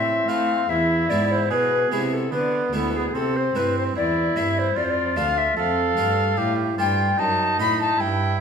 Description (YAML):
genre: classical, baroque-style sonata movement with continuo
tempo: 74 BPM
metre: 3/4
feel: straight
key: A minor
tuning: A4 = 441 Hz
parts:
  - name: tenor recorder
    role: melody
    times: 0.0-8.4 s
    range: G#4 to B5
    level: -23 LUFS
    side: left 4 dB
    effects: none
  - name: warm oboe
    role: second line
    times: 0.0-8.4 s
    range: B3 to A4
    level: -26 LUFS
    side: right 8 dB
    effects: none
  - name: harpsichord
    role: accompaniment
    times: 0.0-8.4 s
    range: D2 to C5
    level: -28 LUFS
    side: left 1 dB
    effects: none
  - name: rich cello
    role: bass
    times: 0.0-8.4 s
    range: D2 to A3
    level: -27 LUFS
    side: right 2 dB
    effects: none
room: wet recital hall reverb, RT60 1.6 s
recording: minimal, uncompressed stereo recording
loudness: -19 LUFS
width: side -6 dB against mid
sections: 0.0-8.4 A section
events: none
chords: 0.0 Am; 0.7 E; 2.3 E7/D; 3.1 Am; 4.8 Dm/F; 5.6 Dm7/F; 7.2 F#dim7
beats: | 0.69 1.51 2.32 | 3.14 3.96 4.77 | 5.57 6.38 7.19 | 8.00